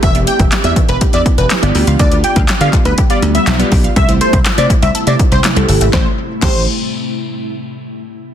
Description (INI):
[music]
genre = dance-pop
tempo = 122 BPM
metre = 4/4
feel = straight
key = A minor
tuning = A4 = 440 Hz
[part]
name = plucky unison lead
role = melody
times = 0.0-6.7 s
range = B4 to G5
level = -18 LUFS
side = equal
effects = none
[part]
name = ethereal airy pad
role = sustained chords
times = 0.0-6.2 s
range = C3 to G4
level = -22 LUFS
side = left 1 dB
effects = ensemble chorus, built-in reverb, sidechain pumping
[part]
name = resonant blip pluck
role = arpeggios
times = 0.0-6.7 s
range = E3 to F5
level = -25 LUFS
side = equal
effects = phaser, sidechain pumping, ping-pong delay
[part]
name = dry thumbed slap bass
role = bass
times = 0.0-6.7 s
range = E1 to D3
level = -15 LUFS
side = equal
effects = sidechain pumping
[part]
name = house drum kit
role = drums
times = 0.0-6.5 s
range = crash cymbal, handclaps, hi-hat, kick drum, snare drum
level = -14 LUFS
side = equal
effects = none
[part]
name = downlifter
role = sound effects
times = 0.0-2.0 s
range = none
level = -33 LUFS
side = equal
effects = none
[part]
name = glassy digital keys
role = accompaniment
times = 0.1-6.7 s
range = A3 to D5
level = -21 LUFS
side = right 3 dB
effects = chorus, sidechain pumping
[part]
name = group handclap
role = percussion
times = 2.5-6.7 s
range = none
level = -26 LUFS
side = left 9 dB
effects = none
[sound]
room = digital ambience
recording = dense, heavily limited modern master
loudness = -10 LUFS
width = side -10 dB against mid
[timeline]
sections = 0.0-5.9 A section; 5.9-7.9 B section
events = none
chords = 0.0 Em7; 1.8 G7; 4.0 C6; 5.9 Am7